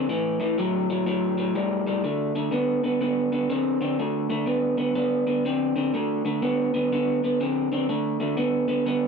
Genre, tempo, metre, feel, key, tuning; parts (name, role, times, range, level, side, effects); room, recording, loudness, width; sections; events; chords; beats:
blues; 123 BPM; 4/4; swing 64% on 8ths; D mixolydian; A4 = 440 Hz
electric guitar through a small old amp; solo; 0.0-9.1 s; A2 to C4; -22 LUFS; equal; analog delay
moderate studio reverb, RT60 0.8 s; -22 LUFS; side -5 dB against mid
0.0-2.0 A section; 2.0-9.1 B section
0.1 A5; 2.0 D5
| 0.10 0.58 1.07 1.55 | 2.04 2.53 3.01 3.50 | 3.99 4.47 4.96 5.45 | 5.93 6.42 6.91 7.39 | 7.88 8.37 8.86